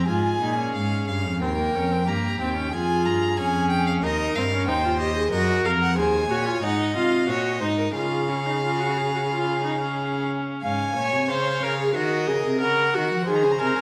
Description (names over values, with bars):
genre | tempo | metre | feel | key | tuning
classical, baroque-style fugue for string quartet | 91 BPM | 4/4 | straight | Db major from 5.3 s | A4 = 440 Hz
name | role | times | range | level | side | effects
clear violin | melody | 0.0-13.8 s | Eb5 to Bb5 | -31 LUFS | equal | none
rich violin | second line | 0.0-13.8 s | G4 to F5 | -32 LUFS | equal | none
clear viola | accompaniment | 0.0-13.8 s | Bb3 to Db5 | -27 LUFS | equal | none
clear cello | bass | 0.0-13.8 s | Eb2 to F3 | -29 LUFS | equal | none
room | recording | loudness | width
wet recital hall reverb, RT60 1.4 s | none | -23 LUFS | mono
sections
0.1-10.6 A section; 10.6-13.8 B section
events
none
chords
0.1 Fm/Ab; 1.4 Eb; 2.7 Db/F; 4.0 Cm/Eb; 5.3 Ebm; 6.6 Ab7; 8.0 Db; 10.6 Db/Ab; 12.0 Ab7